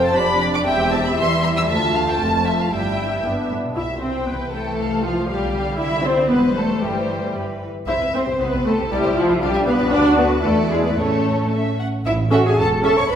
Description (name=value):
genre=quick classical-period movement for string orchestra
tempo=116 BPM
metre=2/4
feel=rubato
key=C major, A major from 9.9 s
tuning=A4 = 442 Hz
part: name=muted symphonic violin section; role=melody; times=0.0-12.9 s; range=G4 to E6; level=-26 LUFS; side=left 3 dB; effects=none
part: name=muted symphonic violin section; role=second line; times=0.0-13.2 s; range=F4 to C#6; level=-24 LUFS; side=left 1 dB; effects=none
part: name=muted symphonic viola section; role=accompaniment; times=0.0-12.9 s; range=F3 to A4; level=-21 LUFS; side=equal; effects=none
part: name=muted chamber double bass section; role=bass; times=0.0-13.2 s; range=E1 to E2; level=-26 LUFS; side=right 1 dB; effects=none
part: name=muted symphonic cello section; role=bass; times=0.0-13.2 s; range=D2 to C#5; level=-24 LUFS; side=right 2 dB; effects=none
room=wet recital hall reverb, RT60 1.7 s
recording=recorded in a church or concert hall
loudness=-17 LUFS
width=side -9 dB against mid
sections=0.0-3.8 A section; 3.8-12.1 B section; 12.1-13.2 C section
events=none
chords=0.1 G7/F; 0.7 C/E; 1.7 Dm; 2.7 Em/G; 3.2 G; 3.8 C; 4.8 Fmaj7/C; 5.3 G7/B; 5.8 C; 6.3 C/E; 6.8 C/G; 7.9 C5; 8.9 Dm7/C (rootless); 9.4 G/B; 9.9 Bm/D; 10.4 E7sus4; 11.0 A